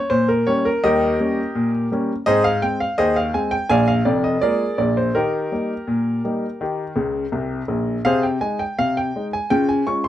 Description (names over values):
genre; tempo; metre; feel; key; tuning
ragtime piano; 83 BPM; 2/4; straight; unclear; A4 = 440 Hz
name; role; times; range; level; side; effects
clear grand piano; solo; 0.0-10.1 s; F1 to Db6; -18 LUFS; equal; none
room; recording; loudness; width
light reverb; none; -18 LUFS; side -12 dB against mid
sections
0.0-10.1 A section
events
grand piano fill 7.0-8.1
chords
0.0 Eb7; 2.3 Ab; 3.7 Bb7; 5.2 Eb; 8.1 Ab/C; 9.5 Db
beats
0.11 | 0.83 1.55 | 2.27 2.99 | 3.71 4.43 | 5.16 5.89 | 6.61 7.34 | 8.06 8.79 | 9.51